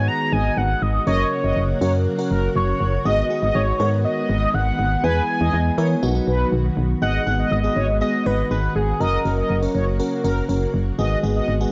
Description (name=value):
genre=synth-pop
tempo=121 BPM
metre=4/4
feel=straight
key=unclear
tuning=A4 = 440 Hz
part: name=octave-doubled lead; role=melody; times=0.0-10.0 s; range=G#4 to A#5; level=-26 LUFS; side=equal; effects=chorus, phaser, analog delay
part: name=FM electric piano with soft pad layer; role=accompaniment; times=0.0-11.7 s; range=B3 to B4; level=-30 LUFS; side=equal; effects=chorus
part: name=ensemble organ-string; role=sustained chords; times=0.0-11.7 s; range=C#3 to G#4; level=-29 LUFS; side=equal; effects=ensemble chorus
part: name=solid FM bass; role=bass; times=0.0-11.7 s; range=F#1 to E3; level=-24 LUFS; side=equal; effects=none
part: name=mellow synth brass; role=second line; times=0.3-11.6 s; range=A#4 to D#5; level=-29 LUFS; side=equal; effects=chorus, analog delay
room=light reverb, digital ambience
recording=dry, gritty hardware recording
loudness=-20 LUFS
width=mono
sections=0.0-7.0 A section; 7.0-11.7 B section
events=none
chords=0.0 G#m7; 1.1 F#; 3.1 G#m7; 5.0 E; 6.0 B; 7.0 G#m7; 9.0 F#; 11.0 G#m7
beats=0.08 0.57 | 1.07 1.57 2.06 2.56 | 3.05 3.55 4.04 4.54 | 5.04 5.53 6.03 6.52 | 7.02 7.52 8.01 8.51 | 9.00 9.50 10.00 10.49 | 10.99 11.48